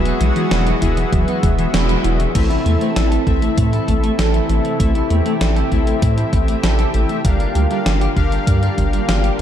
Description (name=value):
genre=synthwave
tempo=98 BPM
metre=4/4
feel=straight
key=unclear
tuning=A4 = 439 Hz
part: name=lush unison pad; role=sustained chords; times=0.0-9.4 s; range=C3 to A4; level=-22 LUFS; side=equal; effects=chorus, sidechain pumping
part: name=thumb-piano-like synth pluck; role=arpeggios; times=0.0-2.2 s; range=F#3 to E4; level=-27 LUFS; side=right 2 dB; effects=chorus, ping-pong delay
part: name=analog synth brass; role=stabs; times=0.0-9.4 s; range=B3 to F5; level=-23 LUFS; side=left 4 dB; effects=chorus, ping-pong delay
part: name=round analog bass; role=bass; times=0.0-9.4 s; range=E1 to A2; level=-18 LUFS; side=equal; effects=none
part: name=clean electric guitar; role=riff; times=0.1-9.4 s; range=E3 to A4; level=-24 LUFS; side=equal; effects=lush chorus, ping-pong delay
part: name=gated 80s digital drum machine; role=drums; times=0.1-9.4 s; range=crash cymbal, hi-hat, snare drum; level=-24 LUFS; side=equal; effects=gated reverb, gated reverb snare, overdrive
part: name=electronic kick drum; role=drums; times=0.8-8.9 s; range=none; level=-19 LUFS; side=equal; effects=overdrive
room=light reverb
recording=dark, warm production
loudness=-14 LUFS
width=side -10 dB against mid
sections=0.0-2.3 A section; 2.3-9.4 B section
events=band accent 1.7-2.0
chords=0.0 Eadd9; 2.3 Am; 7.2 Gm7